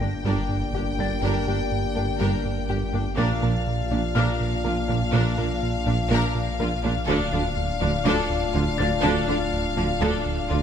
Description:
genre	cinematic, hybrid orchestral and electronic film score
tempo	123 BPM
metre	4/4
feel	straight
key	G minor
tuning	A4 = 439 Hz
part	rich chamber violin section	melody	0.0-10.6 s	F5 to G5	-31 LUFS	left 5 dB	none
part	clear symphonic violin section	second line	0.0-10.6 s	D4 to Bb4	-33 LUFS	left 3 dB	none
part	rich symphonic viola section	accompaniment	0.0-10.6 s	D4	-32 LUFS	right 2 dB	none
part	dark French horn section	sustained chords	0.0-10.6 s	Bb3 to F4	-32 LUFS	left 4 dB	none
part	deep rumbling drone	sustained chords	0.0-10.6 s	A3 to D5	-33 LUFS	left 1 dB	built-in reverb
part	soft round pluck	arpeggios	0.0-10.6 s	D3 to Bb4	-35 LUFS	left 4 dB	none
part	round analog bass	riff	0.0-10.6 s	D2 to Bb2	-29 LUFS	right 2 dB	none
part	dark tuba	bass	0.0-10.6 s	G1 to D2	-32 LUFS	right 3 dB	none
part	rich symphonic cello section	bass	0.0-10.6 s	G2 to D3	-30 LUFS	right 3 dB	none
part	rich symphonic double bass section	bass	0.0-10.6 s	G1 to D2	-31 LUFS	right 4 dB	none
part	saturated sub bass	bass	0.0-10.6 s	D1 to Bb1	-32 LUFS	equal	none
part	sub drop	sound effects	0.0-1.2 s	none	-39 LUFS	left 1 dB	none
part	warm concert grand piano	texture	0.0-10.6 s	F5 to Bb6	-37 LUFS	left 5 dB	ping-pong delay
room	moderate scoring stage reverb, RT60 1.9 s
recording	none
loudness	-21 LUFS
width	side -8 dB against mid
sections	0.0-10.6 A section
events	impact 0.0-1.2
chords	0.0 Gm; 3.2 Bb; 7.1 Dm

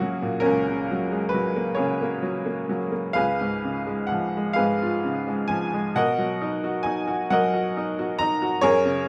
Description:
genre	classical, lyrical solo piano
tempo	44 BPM (dotted quarters)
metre	6/8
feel	uneven beats, rubato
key	unclear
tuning	A4 = 438 Hz
part	bright upright piano	solo	0.0-9.1 s	C#2 to A#5	-24 LUFS	equal	none
room	moderate recital hall reverb, RT60 1.4 s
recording	none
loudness	-24 LUFS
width	mono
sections	0.0-9.1 A section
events	none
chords	0.0 F#add9; 3.2 C#7; 6.0 Bmaj7

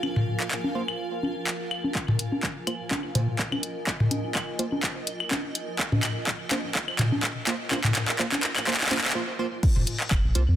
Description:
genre	minimal techno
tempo	125 BPM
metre	4/4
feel	swing 55% on 16ths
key	F minor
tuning	A4 = 440 Hz
part	electronic congas, claves and toms	percussion	0.0-10.2 s	none	-28 LUFS	left 1 dB	tape echo
part	granular cloud pad	texture	0.0-10.6 s	F4 to Ab5	-36 LUFS	right 2 dB	built-in reverb, sidechain pumping
part	house drum kit	drums	0.4-10.5 s	crash cymbal, handclaps, hi-hat	-27 LUFS	equal	overdrive
part	wavetable chord stab	stabs	0.8-10.4 s	Bb3 to C5	-33 LUFS	right 3 dB	tape echo
part	electronic kick drum	drums	2.0-10.2 s	none	-27 LUFS	equal	overdrive, high-pass filter on kick
part	round analog bass	bass	9.8-10.6 s	F1 to F2	-22 LUFS	equal	sidechain pumping
room	light reverb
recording	dense, heavily limited modern master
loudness	-24 LUFS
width	side -11 dB against mid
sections	0.0-2.0 A section; 2.0-9.6 B section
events	build-up 2.0-9.6; drum fill 2.0-9.2; filter sweep on synth stab 2.0-9.6; break 9.2-9.6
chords	0.0 Fsus4

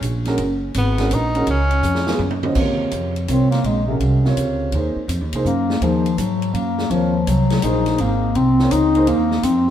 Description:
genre	modal jazz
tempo	166 BPM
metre	3/4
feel	swing 66% on 8ths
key	Eb dorian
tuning	A4 = 440 Hz
part	upright bass	bass	0.0-9.7 s	F#1 to Ab2	-20 LUFS	right 1 dB	none
part	swinging big-band drum kit	drums	0.0-9.7 s	crash cymbal, hi-hat, kick drum, ride cymbal, snare drum, toms	-29 LUFS	right 1 dB	none
part	warm concert grand piano	accompaniment	0.3-9.1 s	C3 to D#5	-24 LUFS	right 2 dB	none
part	clear tenor saxophone	melody	0.8-2.2 s	B3 to D#4	-23 LUFS	left 1 dB	none
part	warm bass clarinet	second line	3.3-9.7 s	C3 to Eb4	-18 LUFS	left 3 dB	none
room	moderate echo chamber reverb, RT60 2.1 s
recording	heard from further back in the room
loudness	-16 LUFS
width	side -10 dB against mid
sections	0.0-2.6 A section; 2.6-9.7 B section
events	drum fill 1.8-2.6; bass clarinet solo 2.6-9.7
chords	0.0 F#; 2.6 Ebm69; 6.9 Ab

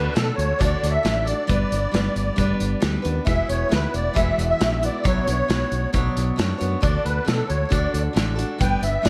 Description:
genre	folk rock and heartland rock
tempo	135 BPM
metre	4/4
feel	straight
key	D major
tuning	A4 = 440 Hz
part	musette accordion	melody	0.0-9.1 s	A4 to G5	-27 LUFS	equal	tape echo
part	picked steel-string acoustic guitar	accompaniment	0.0-9.1 s	E2 to C#5	-29 LUFS	equal	none
part	fingered electric bass	bass	0.0-9.1 s	E1 to B2	-27 LUFS	equal	none
part	loose indie drum kit	drums	0.2-9.1 s	hi-hat, kick drum, snare drum	-27 LUFS	equal	none
room	light reverb, small room ambience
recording	vinyl crackle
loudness	-22 LUFS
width	mono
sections	0.0-9.1 A section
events	none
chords	0.0 D; 1.5 G; 3.3 Eadd9; 5.0 Bmadd9; 6.8 D

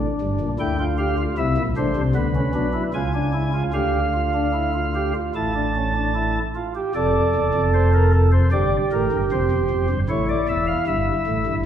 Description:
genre	classical, baroque-style 3-part fugue for pipe organ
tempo	76 BPM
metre	4/4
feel	straight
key	D minor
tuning	A4 = 439 Hz
part	pipe organ, flutes	solo	0.0-11.7 s	E1 to A5	-18 LUFS	equal	none
room	wet recital hall reverb, RT60 1.5 s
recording	heard from further back in the room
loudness	-18 LUFS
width	side -9 dB against mid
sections	0.0-6.9 A section; 6.9-11.7 B section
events	none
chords	0.0 Gm; 0.6 Em7b5/D; 2.1 G#dim7; 3.7 Dm; 5.4 A; 6.9 Dm; 8.5 Gm; 10.1 A7

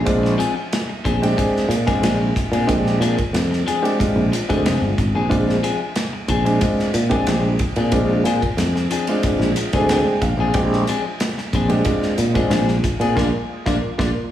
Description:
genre	electric jazz fusion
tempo	92 BPM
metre	4/4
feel	straight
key	Bb mixolydian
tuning	A4 = 440 Hz
part	clean electric guitar	stabs	0.0-14.1 s	F3 to Ab4	-26 LUFS	left 6 dB	wide subtle chorus
part	sustaining fretless electric bass	bass	0.0-14.1 s	F1 to Bb2	-20 LUFS	equal	none
part	dark grand piano	accompaniment	0.1-14.1 s	Ab3 to G5	-21 LUFS	right 1 dB	none
part	modern studio drum kit	drums	0.1-14.1 s	hi-hat, kick drum, ride cymbal, snare drum	-24 LUFS	equal	none
room	light reverb, small room reverb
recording	studio reverb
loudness	-17 LUFS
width	side -11 dB against mid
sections	0.0-14.3 A section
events	grand piano fill 9.6-10.5; band accent 13.2-14.3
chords	0.0 Bb9

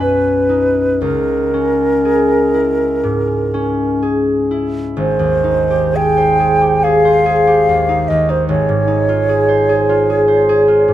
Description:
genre	classical, impressionist duo for flute and harp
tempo	56-76 BPM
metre	4/4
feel	rubato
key	Ab major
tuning	A4 = 443 Hz
part	mellow hollow silver concert flute	melody	0.0-10.9 s	Bb4 to G5	-15 LUFS	right 1 dB	none
part	concert harp	accompaniment	0.0-10.9 s	Ab1 to C5	-14 LUFS	left 1 dB	none
room	little or no reverb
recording	close, detailed microphones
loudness	-12 LUFS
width	side -12 dB against mid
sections	0.0-5.0 A section; 5.0-10.9 B section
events	none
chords	0.0 Badd9; 1.0 Dbm6; 5.0 Abmaj7; 8.5 Dbmaj9/Ab

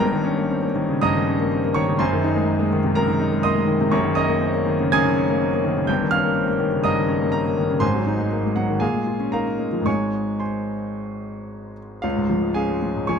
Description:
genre	classical, virtuoso piano study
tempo	109-127 BPM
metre	4/4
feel	rubato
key	unclear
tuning	A4 = 440 Hz
part	warm concert grand piano	solo	0.0-13.2 s	Gb1 to Ab6	-19 LUFS	equal	none
room	light reverb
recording	close, detailed microphones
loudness	-19 LUFS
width	side -6 dB against mid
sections	0.0-12.0 A section; 12.0-13.2 B section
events	none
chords	0.0 Eb7/G; 2.0 Ab7/Gb; 3.9 Ebm7/Gb; 5.9 Eb7/G; 7.8 Ab7; 8.8 Bbm7; 9.9 Ab; 12.0 Db

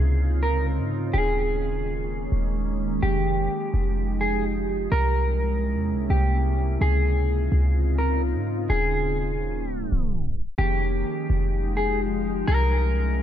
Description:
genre	hip hop, atmospheric cloud-rap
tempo	127 BPM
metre	4/4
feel	half-time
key	F minor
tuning	A4 = 440 Hz
part	mellow electric guitar	melody	0.0-13.2 s	G4 to Bb4	-28 LUFS	equal	lush chorus, ping-pong delay
part	glassy FM pad	sustained chords	0.0-13.2 s	C3 to Ab4	-28 LUFS	right 1 dB	ensemble chorus, built-in reverb
part	clean 808-style bass	bass	0.0-13.2 s	Eb1 to Ab2	-24 LUFS	equal	none
room	little or no reverb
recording	tape stop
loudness	-22 LUFS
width	side -10 dB against mid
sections	0.0-10.6 A section; 10.6-13.2 B section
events	tape stop 9.6-10.6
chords	0.0 Dbmaj9; 1.1 Eb7sus4; 3.0 Fm9; 4.9 C7b9b13; 6.8 Dbmaj9; 8.7 Eb7sus4; 10.6 Fm9; 12.5 C7b9b13

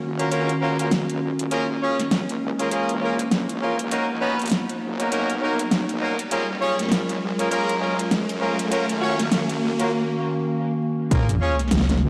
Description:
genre	glitch hop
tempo	100 BPM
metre	4/4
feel	swing 60% on 16ths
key	Bb phrygian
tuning	A4 = 438 Hz
part	warbly tape-like pad	sustained chords	0.0-12.1 s	Eb3 to Bb4	-29 LUFS	equal	chorus, built-in reverb, sidechain pumping
part	wobble bass	bass	0.0-12.1 s	Eb1 to Eb2	-32 LUFS	equal	chorus, tube saturation, high-pass filter
part	riser and sub drop	sound effects	1.4-12.1 s	none	-33 LUFS	equal	none
part	bright horn section	stabs	0.2-11.6 s	Bb3 to Db5	-27 LUFS	equal	sidechain pumping, tape echo
part	pop drum kit	drums	0.2-12.0 s	hi-hat, snare drum	-27 LUFS	equal	overdrive
part	electronic kick drum	drums	11.1-11.3 s	none	-23 LUFS	equal	overdrive
room	moderate lush hall reverb, RT60 2.4 s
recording	dry, gritty hardware recording, vinyl crackle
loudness	-23 LUFS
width	mono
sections	0.0-11.1 A section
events	build-up 0.0-11.1; riser 1.4-9.9; break 9.9-11.1; impact 11.1-12.1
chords	0.0 Ebm7; 1.5 Bbm7; 3.9 Bmaj7; 6.3 Gbmaj7; 8.7 Ebm7; 11.1 Bbm7

